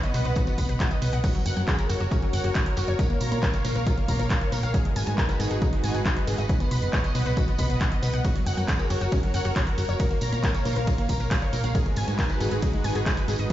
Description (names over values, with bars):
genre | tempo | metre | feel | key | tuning
uplifting trance | 137 BPM | 4/4 | straight | unclear | A4 = 440 Hz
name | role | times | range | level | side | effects
supersaw pad | sustained chords | 0.0-13.5 s | G#3 to F#5 | -31 LUFS | right 1 dB | sidechain pumping
wide unison pluck | arpeggios | 0.0-13.5 s | F#3 to B5 | -33 LUFS | left 4 dB | sidechain pumping, dub echo
punchy analog drum machine | drums | 0.0-13.5 s | crash cymbal, handclaps, hi-hat, ride cymbal | -34 LUFS | equal | none
tambourine | percussion | 0.0-13.5 s | none | -41 LUFS | right 4 dB | none
solid FM bass | bass | 0.1-13.5 s | F#1 to A#2 | -26 LUFS | equal | sidechain pumping
electronic kick drum | drums | 0.4-13.5 s | none | -25 LUFS | equal | none
room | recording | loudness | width
little or no reverb | played on a big sound system in a bare room, stone room reverb, nothing above 7.6 kHz | -22 LUFS | side -13 dB against mid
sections
0.0-13.5 A section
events
none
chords
0.0 B; 1.2 F#; 3.0 A#m; 4.7 G#m7; 6.5 B; 8.2 F#; 10.0 A#m; 11.7 G#m7